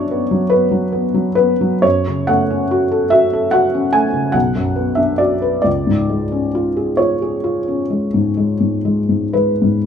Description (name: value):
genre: classical, romantic nocturne for solo piano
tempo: 37-52 BPM (dotted quarters)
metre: 9/8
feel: rubato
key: unclear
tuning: A4 = 440 Hz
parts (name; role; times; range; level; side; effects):
- felt-muted upright piano; solo; 0.0-9.9 s; B1 to G#5; -14 LUFS; left 1 dB; none
room: light reverb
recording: minimal, uncompressed stereo recording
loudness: -14 LUFS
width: side -8 dB against mid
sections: 0.0-9.9 A section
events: none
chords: 0.0 Bm/F#; 1.8 F#m; 4.3 Bm; 5.7 C#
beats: 0.51 | 1.84 3.12 4.34 | 5.66 7.00 8.38